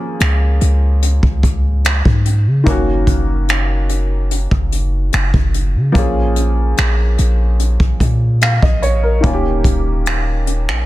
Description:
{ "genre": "contemporary R&B", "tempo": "73 BPM", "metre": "4/4", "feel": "straight", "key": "unclear", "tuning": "A4 = 440 Hz", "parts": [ { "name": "felt-muted upright piano", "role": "accompaniment", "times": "0.0-10.9 s", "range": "Eb3 to F5", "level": "-21 LUFS", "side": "equal", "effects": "none" }, { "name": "warm 808-style bass", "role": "bass", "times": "0.2-10.9 s", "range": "Eb1 to Db3", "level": "-15 LUFS", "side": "equal", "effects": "none" }, { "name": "jazz brush drum kit", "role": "drums", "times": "0.2-10.9 s", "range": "finger snaps, hi-hat, kick drum", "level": "-17 LUFS", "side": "equal", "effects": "none" } ], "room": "little or no reverb", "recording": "dense, heavily limited modern master", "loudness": "-12 LUFS", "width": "side -16 dB against mid", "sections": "0.0-10.9 A section", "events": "none", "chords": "0.0 Db6; 2.7 Gb6; 6.0 Bbm7; 9.2 Eb7" }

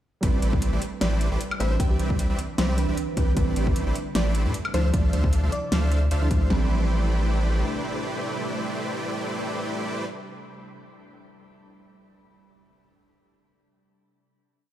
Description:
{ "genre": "future bass", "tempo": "153 BPM", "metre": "4/4", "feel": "swing 55% on 16ths, half-time", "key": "A minor", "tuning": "A4 = 436 Hz", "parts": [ { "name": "soft round pluck", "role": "accompaniment", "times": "0.2-10.1 s", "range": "E3 to B5", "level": "-32 LUFS", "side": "right 4 dB", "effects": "wide subtle chorus, vintage 12-bit sampler grit, sidechain pumping, tape echo" }, { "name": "ethereal airy pad", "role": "sustained chords", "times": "0.9-10.0 s", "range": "C3 to B5", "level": "-38 LUFS", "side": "left 2 dB", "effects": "ensemble chorus, built-in reverb, phaser, sidechain pumping" }, { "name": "dense compressed supersaw", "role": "riff", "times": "0.2-10.0 s", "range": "A3 to G5", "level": "-30 LUFS", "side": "equal", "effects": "sidechain pumping, tape echo" }, { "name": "saturated sub bass", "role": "bass", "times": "0.2-7.6 s", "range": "A1 to A2", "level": "-23 LUFS", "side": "equal", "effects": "sidechain pumping" }, { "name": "pop drum kit", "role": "drums", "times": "0.2-6.6 s", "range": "kick drum, snare drum, toms", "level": "-24 LUFS", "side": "equal", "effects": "overdrive" }, { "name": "pop drum kit", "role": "drums", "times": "0.2-6.4 s", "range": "hi-hat, snare drum, woodblock", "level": "-28 LUFS", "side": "left 1 dB", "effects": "overdrive" }, { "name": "bell-like FM electric piano", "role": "melody", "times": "1.0-6.1 s", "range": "G4 to D5", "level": "-36 LUFS", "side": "left 1 dB", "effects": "chorus, phaser, sidechain pumping, tape echo" } ], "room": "little or no reverb", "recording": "played on a big sound system in a bare room, large studio reverb", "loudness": "-22 LUFS", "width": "side -12 dB against mid", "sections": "0.2-6.5 drop; 6.5-9.6 final chord", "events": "drop 0.2-6.5", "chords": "0.2 Am11; 1.8 Cmaj9; 3.4 Am11; 4.7 Dm9; 6.5 Am11" }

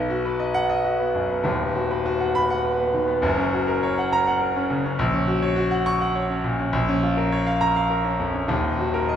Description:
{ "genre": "classical, virtuoso piano study", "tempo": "102 BPM", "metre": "3/4", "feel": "rubato", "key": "B major", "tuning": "A4 = 440 Hz", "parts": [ { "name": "clear grand piano", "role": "solo", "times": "0.0-9.2 s", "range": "D#1 to C#6", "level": "-20 LUFS", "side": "equal", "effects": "none" } ], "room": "wet recital hall reverb, RT60 1.3 s", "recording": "heard from further back in the room", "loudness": "-20 LUFS", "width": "side -9 dB against mid", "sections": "0.0-9.2 A section", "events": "none", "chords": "0.0 B; 1.4 B/D#; 3.2 F#; 5.0 F#/A#; 6.7 A#m; 8.5 D#m" }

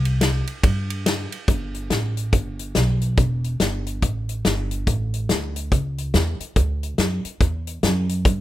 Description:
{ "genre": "honky-tonk and classic country", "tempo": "142 BPM", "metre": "4/4", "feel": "swing 62% on 8ths", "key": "G major", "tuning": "A4 = 435 Hz", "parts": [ { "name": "upright bass", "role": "bass", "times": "0.0-8.4 s", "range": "E1 to G2", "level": "-23 LUFS", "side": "right 1 dB", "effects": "none" }, { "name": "natural country drum kit", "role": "drums", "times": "0.1-8.4 s", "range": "hi-hat, kick drum, ride cymbal, snare drum", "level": "-21 LUFS", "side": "left 1 dB", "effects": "none" } ], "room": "little or no reverb", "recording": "minimal, uncompressed stereo recording", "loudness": "-20 LUFS", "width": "side -14 dB against mid", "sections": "0.0-1.5 A section; 1.5-8.4 B section", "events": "none", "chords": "none" }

